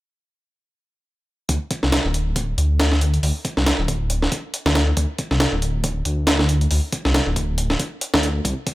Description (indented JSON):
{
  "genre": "breakbeat, breaks",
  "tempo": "138 BPM",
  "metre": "4/4",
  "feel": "swing 57% on 16ths",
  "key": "unclear",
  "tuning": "A4 = 441 Hz",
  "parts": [
    { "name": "dark detuned saw bass", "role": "bass", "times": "1.5-8.5 s", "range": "D1 to D2", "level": "-20 LUFS", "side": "equal", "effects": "none" },
    { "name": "breakbeat sampler-style drum kit", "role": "drums", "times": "1.5-8.7 s", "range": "hi-hat, kick drum, snare drum", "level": "-21 LUFS", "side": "equal", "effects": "high-pass filter on hats, small room ambience, high-pass filter on kick, high-pass filter on snare" }
  ],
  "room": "little or no reverb",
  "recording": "none",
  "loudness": "-18 LUFS",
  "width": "side -18 dB against mid",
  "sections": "1.5-8.7 A section",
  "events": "filter sweep on detuned saw bass 1.5-8.7",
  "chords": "none"
}